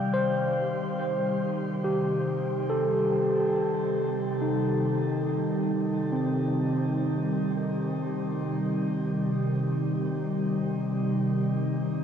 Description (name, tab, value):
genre	ambient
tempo	70 BPM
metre	4/4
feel	straight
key	C dorian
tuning	A4 = 439 Hz
part	glassy FM pad	sustained chords	0.0-12.0 s	C3 to G3	-27 LUFS	equal	ensemble chorus, built-in reverb
part	barky tine electric piano	arpeggios	0.0-12.0 s	C4 to G5	-29 LUFS	equal	overdrive, diffuse ambient delay
room	wet shimmer reverb, RT60 8.0 s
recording	worn, warbling old tape, cassette tape, warbly pitch drift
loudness	-25 LUFS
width	side -8 dB against mid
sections	0.0-12.0 A section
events	filter sweep on ambient pad 0.0-12.0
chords	0.0 Cm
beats	0.13 0.99 1.85 | 2.70 3.56 4.42 5.28 | 6.13 6.99 7.85 8.70 | 9.56 10.42 11.28